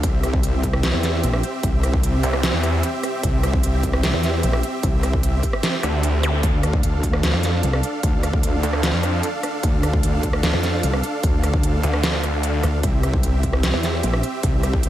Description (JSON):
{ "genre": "heavy wobble dubstep", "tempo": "150 BPM", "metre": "4/4", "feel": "half-time", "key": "unclear", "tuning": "A4 = 440 Hz", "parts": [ { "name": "supersaw chords", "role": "sustained chords", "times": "0.0-14.9 s", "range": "C4 to F5", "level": "-26 LUFS", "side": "right 1 dB", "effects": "sidechain pumping" }, { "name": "wobble bass", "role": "bass", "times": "0.0-14.9 s", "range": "Bb1 to D2", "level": "-21 LUFS", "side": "equal", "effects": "chorus, overdrive" }, { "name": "dubstep drum kit", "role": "drums", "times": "0.0-14.9 s", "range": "hi-hat, rim click, snare drum", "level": "-25 LUFS", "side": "right 1 dB", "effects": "studio reverb" }, { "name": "electronic kick drum", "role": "drums", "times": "0.0-14.8 s", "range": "none", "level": "-22 LUFS", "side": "equal", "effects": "studio reverb" }, { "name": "snarling distorted saw bass", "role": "bass", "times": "0.9-14.0 s", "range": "C2 to F2", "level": "-21 LUFS", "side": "equal", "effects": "distortion, overdrive" }, { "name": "zap", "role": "sound effects", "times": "6.2-6.3 s", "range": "none", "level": "-29 LUFS", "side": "equal", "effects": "none" } ], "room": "little or no reverb", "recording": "none", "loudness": "-18 LUFS", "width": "side -13 dB against mid", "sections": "0.0-14.9 A section", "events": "kick drops out 5.6-6.4", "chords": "0.0 C; 6.4 Dm; 12.8 C" }